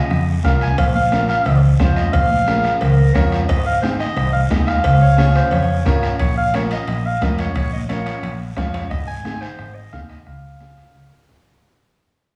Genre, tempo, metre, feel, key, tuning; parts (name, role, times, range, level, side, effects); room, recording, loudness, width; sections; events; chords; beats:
latin, cumbia; 177 BPM; 4/4; straight; Bb minor; A4 = 440 Hz
warm clarinet; melody; 0.0-11.2 s; C5 to Ab5; -24 LUFS; equal
fingered electric bass; bass; 0.1-11.6 s; Ab1 to F2; -21 LUFS; equal
bombo; percussion; 0.1-11.6 s; -25 LUFS; equal
congas; percussion; 0.1-11.5 s; -30 LUFS; equal
guiro; percussion; 0.1-11.6 s; -39 LUFS; equal
bright upright piano; accompaniment; 0.4-11.6 s; C4 to F5; -29 LUFS; equal
cowbell and timbales; percussion; 0.8-8.9 s; -33 LUFS; equal
breathy clarinet; second line; 2.5-6.2 s; Ab4 to Db5; -29 LUFS; equal
wet large studio reverb, RT60 1.3 s; heard from further back in the room, small room ambience; -17 LUFS; mono
0.0-6.2 A section; 6.2-11.6 B section
fade-out 6.2-11.6; upright piano fill 8.4-8.9, 11.1-11.6
0.0 Db; 0.8 Bbm; 3.5 Ab; 4.8 Db; 6.2 Bbm; 8.9 Ab; 10.3 Db
0.10 0.44 | 0.78 1.12 1.46 1.80 | 2.13 2.47 2.81 3.15 | 3.49 3.83 4.17 4.50 | 4.84 5.18 5.52 5.86 | 6.20 6.53 6.87 7.21 | 7.55 7.89 8.23 8.57 | 8.91 9.25 9.59 9.93 | 10.27 10.61 10.95 11.28